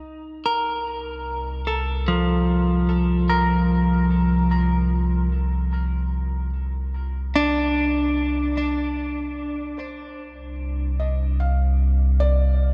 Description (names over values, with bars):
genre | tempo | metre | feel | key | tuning
ambient | 74 BPM | 3/4 | straight | C dorian | A4 = 441 Hz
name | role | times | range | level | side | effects
clean electric guitar | arpeggios | 0.0-10.6 s | F3 to Bb4 | -25 LUFS | equal | spring reverb, tape echo
deep rumbling drone | bass | 0.0-12.7 s | C2 | -25 LUFS | equal | built-in reverb
felt-muted upright piano | melody | 9.8-12.7 s | C5 to F5 | -34 LUFS | equal | none
room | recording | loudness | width
light reverb | none | -22 LUFS | mono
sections
0.0-9.8 A section; 9.8-12.7 B section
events
fade-in on felt piano 9.8-12.7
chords
0.1 C13sus4; 9.8 Csus24